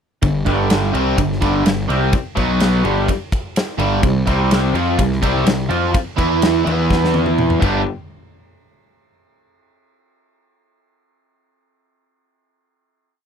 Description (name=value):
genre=classic rock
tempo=126 BPM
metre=4/4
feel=straight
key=G major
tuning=A4 = 439 Hz
part: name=cranked stack guitar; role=riff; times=0.2-7.8 s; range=G2 to G4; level=-21 LUFS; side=left 14 dB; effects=overdrive
part: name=crunchy overdriven guitar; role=riff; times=0.2-7.8 s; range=G2 to G4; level=-19 LUFS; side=right 12 dB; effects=phaser
part: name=fuzz picked electric bass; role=bass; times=0.2-7.8 s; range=G1 to F2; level=-20 LUFS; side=equal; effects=overdrive
part: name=big rock drum kit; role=drums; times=0.2-7.7 s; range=crash cymbal, kick drum, ride cymbal, snare drum, toms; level=-20 LUFS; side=equal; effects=none
room=little or no reverb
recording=dry, close 1970s-style studio recording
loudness=-15 LUFS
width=side -7 dB against mid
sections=0.2-7.9 riff; 7.9-9.8 final hit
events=drum fill 6.9-7.9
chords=0.2 G5; 2.4 B5; 2.8 G5; 4.0 C5; 6.2 E5; 7.6 G; 7.9 N.C.